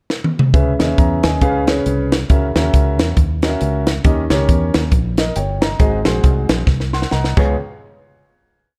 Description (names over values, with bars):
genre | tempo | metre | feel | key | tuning
uptempo gospel | 137 BPM | 4/4 | swing 59% on 8ths | C# dorian | A4 = 443 Hz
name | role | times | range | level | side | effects
crisp fusion drum kit | drums | 0.1-7.5 s | crash cymbal, hi-hat, kick drum, snare drum, toms | -18 LUFS | equal | none
warm concert grand piano | accompaniment | 0.5-7.5 s | C#2 to B#5 | -22 LUFS | equal | none
fingered electric bass | bass | 0.5-7.5 s | G1 to E2 | -22 LUFS | equal | none
room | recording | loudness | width
light reverb | dark, warm production | -16 LUFS | mono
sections
0.0-0.5 pickup bar; 0.5-7.6 breakdown; 7.6-8.8 final hit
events
drum fill 0.1-0.5, 6.7-7.6; grand piano fill 6.9-7.6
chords
0.0 N.C.; 0.5 C#m7; 1.4 C#7; 2.3 F#7/C#; 4.0 D#7; 5.8 G#7; 7.3 C#7; 7.6 N.C.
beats
0.10 | 0.54 0.97 1.42 1.85 | 2.29 2.73 3.17 3.61 | 4.05 4.49 4.92 5.36 | 5.80 6.24 6.68 7.12